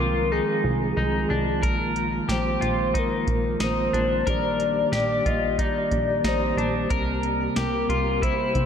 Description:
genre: dream pop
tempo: 91 BPM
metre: 4/4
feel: straight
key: Bb mixolydian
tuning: A4 = 440 Hz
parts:
  - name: soft octave-layered synth lead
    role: melody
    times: 0.0-8.7 s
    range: Ab4 to Eb5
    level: -26 LUFS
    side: left 2 dB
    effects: chorus, ping-pong delay
  - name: mellow tonewheel organ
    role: sustained chords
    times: 0.0-8.7 s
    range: C3 to G4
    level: -28 LUFS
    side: equal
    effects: chorus vibrato, stopped rotary speaker
  - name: semi-hollow electric guitar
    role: arpeggios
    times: 0.0-8.7 s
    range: D4 to Bb4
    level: -28 LUFS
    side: left 2 dB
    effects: lush chorus, ping-pong delay
  - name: plucky analog bass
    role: bass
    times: 0.0-8.7 s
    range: Bb1 to C2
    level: -29 LUFS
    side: equal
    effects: none
  - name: soft vintage rhythm box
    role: drums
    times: 1.6-8.7 s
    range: hi-hat, kick drum, snare drum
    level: -29 LUFS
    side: equal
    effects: none
room: wet lush hall reverb, RT60 2.5 s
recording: dreamy mix soaked in reverb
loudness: -21 LUFS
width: side -8 dB against mid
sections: 0.0-8.7 A section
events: none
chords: 0.0 Fm7/C; 1.6 Bb7sus4; 4.3 Ebmaj7/Bb; 6.9 C7

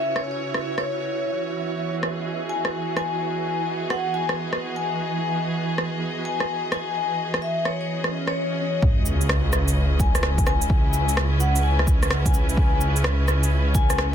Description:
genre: future garage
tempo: 128 BPM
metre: 4/4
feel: swing 65% on 16ths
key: C# minor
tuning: A4 = 442 Hz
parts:
  - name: vibraphone with medium mallets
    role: melody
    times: 0.0-14.1 s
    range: C#5 to G#5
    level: -28 LUFS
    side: left 5 dB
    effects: tape echo
  - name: rich studio string section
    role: sustained chords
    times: 0.0-14.1 s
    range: C#3 to D#5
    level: -28 LUFS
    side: right 2 dB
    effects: sidechain pumping
  - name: wind-like tuned noise texture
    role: texture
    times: 0.0-14.1 s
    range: E4 to G#5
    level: -36 LUFS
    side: right 8 dB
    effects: built-in reverb
  - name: electronic rim click, cabasa and shaker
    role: drums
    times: 0.2-14.1 s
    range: none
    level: -26 LUFS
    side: equal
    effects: soft clipping on snare
  - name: swell and sub drop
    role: sound effects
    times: 8.1-10.7 s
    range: none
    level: -29 LUFS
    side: equal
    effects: none
  - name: swelling detuned saw bass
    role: bass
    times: 8.8-14.1 s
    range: C#2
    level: -22 LUFS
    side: equal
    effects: tube saturation, sidechain pumping
  - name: electronic kick drum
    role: drums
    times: 8.8-13.9 s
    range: none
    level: -21 LUFS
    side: equal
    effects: none
room: digital ambience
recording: dense, heavily limited modern master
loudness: -21 LUFS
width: side -9 dB against mid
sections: 0.0-8.8 A section; 8.8-14.1 B section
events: swell 8.1-8.8; impact 8.8-10.7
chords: 0.0 C#m7; 1.3 Emaj9; 8.8 C#m9

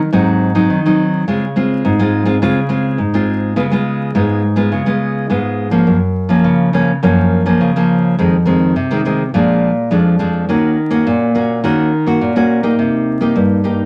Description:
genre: samba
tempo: 104 BPM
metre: 4/4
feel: straight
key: unclear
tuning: A4 = 440 Hz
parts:
  - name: nylon-string guitar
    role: solo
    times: 0.0-13.9 s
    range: F2 to G4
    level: -14 LUFS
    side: equal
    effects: none
room: wet studio reverb, RT60 0.5 s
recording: vinyl crackle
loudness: -14 LUFS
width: mono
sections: 0.0-13.9 A section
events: none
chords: 0.0 Ab7; 1.3 Dbmaj7; 3.6 Db7; 5.9 Gbmaj7; 8.2 Fm7; 9.3 Bb7; 10.5 Ebm7; 12.8 Cm7

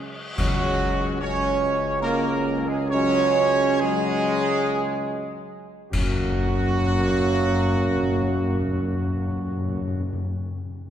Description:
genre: classical, ceremonial fanfare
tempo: 53-74 BPM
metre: 3/4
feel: straight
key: F# major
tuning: A4 = 440 Hz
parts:
  - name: mellow trumpet section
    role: melody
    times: 0.4-10.0 s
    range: F#4 to C#5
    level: -27 LUFS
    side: right 2 dB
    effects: none
  - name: mellow French horn section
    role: sustained chords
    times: 0.4-10.0 s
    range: F#3 to A#3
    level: -29 LUFS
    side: left 4 dB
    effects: none
  - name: warm trombone section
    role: sustained chords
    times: 0.4-10.0 s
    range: F#3 to C#4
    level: -27 LUFS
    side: right 3 dB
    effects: none
  - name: warm tuba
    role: bass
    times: 0.4-10.0 s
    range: C#2 to F#2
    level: -28 LUFS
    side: right 2 dB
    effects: none
  - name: clash cymbals and concert bass drum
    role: percussion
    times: 0.4-2.0, 5.9-8.1 s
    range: none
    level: -30 LUFS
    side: left 1 dB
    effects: none
  - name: timpani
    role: percussion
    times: 0.4-1.6, 5.9-10.2 s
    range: F#2 to C#3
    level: -27 LUFS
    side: left 2 dB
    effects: none
room: wet church reverb, RT60 2.6 s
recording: none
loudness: -21 LUFS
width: side -10 dB against mid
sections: 0.4-5.9 A section; 5.9-9.3 B section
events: slowing down 0.0-5.9; band accent 0.4-1.2, 5.9-7.0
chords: 0.4 C#sus4; 5.9 F#

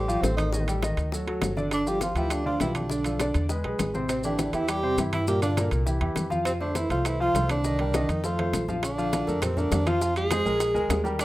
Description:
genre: Afro-Cuban jazz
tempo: 202 BPM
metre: 4/4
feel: straight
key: F major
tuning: A4 = 435 Hz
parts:
  - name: mellow tenor saxophone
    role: melody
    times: 0.0-11.2 s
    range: C4 to Ab4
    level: -29 LUFS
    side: right 2 dB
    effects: none
  - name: breathy trombone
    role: second line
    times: 0.0-11.2 s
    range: C3 to Ab3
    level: -34 LUFS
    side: left 1 dB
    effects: none
  - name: warm concert grand piano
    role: accompaniment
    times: 0.0-11.2 s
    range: Bb2 to F5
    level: -29 LUFS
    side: equal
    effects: none
  - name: upright bass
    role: bass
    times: 0.0-11.2 s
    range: G1 to G2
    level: -29 LUFS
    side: equal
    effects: none
  - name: congas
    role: percussion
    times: 0.1-11.2 s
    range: none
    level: -35 LUFS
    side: left 1 dB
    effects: none
  - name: maracas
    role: percussion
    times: 0.1-11.2 s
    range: none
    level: -40 LUFS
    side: right 1 dB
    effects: none
  - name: bongos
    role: percussion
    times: 0.2-11.2 s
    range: none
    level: -34 LUFS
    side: left 5 dB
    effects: none
  - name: timbales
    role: percussion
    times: 0.2-11.2 s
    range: none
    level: -35 LUFS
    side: right 4 dB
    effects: none
room: moderate studio reverb, RT60 0.6 s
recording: rough home demo mix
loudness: -23 LUFS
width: side -16 dB against mid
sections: 0.0-8.8 A section; 8.8-11.2 B section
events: drum fill 8.4-8.8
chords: 0.0 Fadd9; 0.5 Ebmaj7#11/A; 1.1 D; 1.7 G5; 2.9 Bm7b5; 3.5 E; 4.1 Am7; 5.3 Gm7; 5.9 C; 6.5 F; 7.6 Cm7; 8.2 F; 8.8 Bbmaj7; 10.0 Fm; 10.6 Bb7

